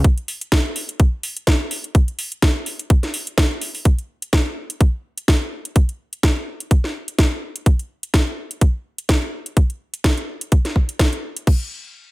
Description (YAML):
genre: bass house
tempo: 126 BPM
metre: 4/4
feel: swing 55% on 16ths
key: none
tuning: none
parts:
  - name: electronic kick drum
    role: drums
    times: 0.0-11.6 s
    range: none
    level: -15 LUFS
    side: equal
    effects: none
  - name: house drum kit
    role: drums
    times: 0.0-11.6 s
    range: crash cymbal, hi-hat, snare drum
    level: -23 LUFS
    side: equal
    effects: overdrive
room: little or no reverb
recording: none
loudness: -18 LUFS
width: side -20 dB against mid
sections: 0.0-11.5 A section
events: none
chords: none